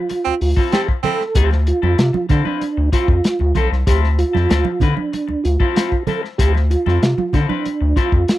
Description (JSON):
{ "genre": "funk", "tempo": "95 BPM", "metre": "4/4", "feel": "straight", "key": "D dorian", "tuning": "A4 = 443 Hz", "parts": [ { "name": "mellow tonewheel organ", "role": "melody", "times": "0.0-8.4 s", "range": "D4 to A4", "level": "-20 LUFS", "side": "right 2 dB", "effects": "chorus vibrato, stopped rotary speaker" }, { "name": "clean electric guitar", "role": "accompaniment", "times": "0.1-8.3 s", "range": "F3 to B4", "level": "-25 LUFS", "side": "left 12 dB", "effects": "spring reverb" }, { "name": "warm soul drum kit", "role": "drums", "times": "0.1-8.4 s", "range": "hi-hat, kick drum, snare drum", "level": "-18 LUFS", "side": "equal", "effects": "none" }, { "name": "congas", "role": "percussion", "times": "0.1-8.4 s", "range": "none", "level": "-26 LUFS", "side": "right 6 dB", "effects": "none" }, { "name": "clear baritone saxophone", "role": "second line", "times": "0.2-1.2 s", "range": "C4", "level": "-20 LUFS", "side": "right 11 dB", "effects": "none" }, { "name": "round analog bass", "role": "bass", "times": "0.3-8.2 s", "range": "B1 to D3", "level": "-16 LUFS", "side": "equal", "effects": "none" } ], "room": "little or no reverb", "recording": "dry, close 1970s-style studio recording", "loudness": "-15 LUFS", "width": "side -15 dB against mid", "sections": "0.0-8.4 A section", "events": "band accent 0.0-1.4", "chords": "0.0 Dm9" }